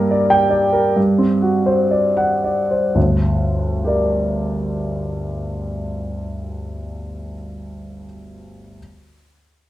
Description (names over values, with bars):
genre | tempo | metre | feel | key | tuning
classical, romantic character piece for solo piano | 54-75 BPM | 2/4 | rubato | G minor | A4 = 442 Hz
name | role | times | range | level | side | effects
warm grand piano | solo | 0.0-8.8 s | G1 to G5 | -17 LUFS | equal | none
room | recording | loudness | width
wet large studio reverb, RT60 0.9 s | heard from further back in the room | -16 LUFS | side -14 dB against mid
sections
0.0-3.0 A section; 3.0-6.6 B section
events
slowing down 0.0-3.0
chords
0.0 Gm; 1.0 D7/G; 3.0 Gm